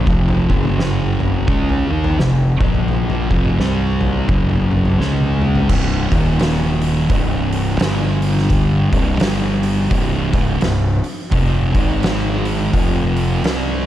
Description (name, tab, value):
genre	stoner and doom metal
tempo	85 BPM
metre	4/4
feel	swing 60% on 8ths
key	C minor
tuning	A4 = 440 Hz
part	thick fuzz guitar	riff	0.0-13.9 s	C2 to Eb4	-18 LUFS	equal	distortion
part	fuzz fingered electric bass	bass	0.0-13.9 s	C1 to Eb2	-21 LUFS	equal	overdrive
part	oversized low-tuned drum kit	drums	0.1-13.6 s	crash cymbal, hi-hat, kick drum, snare drum, toms	-19 LUFS	equal	none
room	studio reverb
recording	dark, warm production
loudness	-14 LUFS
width	side -12 dB against mid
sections	0.0-5.7 A section; 5.7-13.9 B section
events	drum fill 5.0-5.7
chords	0.1 F5; 0.4 F#5; 1.5 F5; 2.5 Bb5; 3.2 F5; 3.6 C5; 4.3 F#5; 5.0 Db5; 5.7 C5; 6.0 Eb5; 7.1 C5; 7.8 G5; 8.9 C5; 9.2 G5; 9.9 C5; 11.3 F5; 11.7 Ab5; 12.7 F5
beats	| 0.07 0.77 1.48 2.18 | 2.88 3.58 4.29 4.99 | 5.69 6.40 7.10 7.80 | 8.51 9.21 9.91 10.62 | 11.32 12.03 12.73 13.44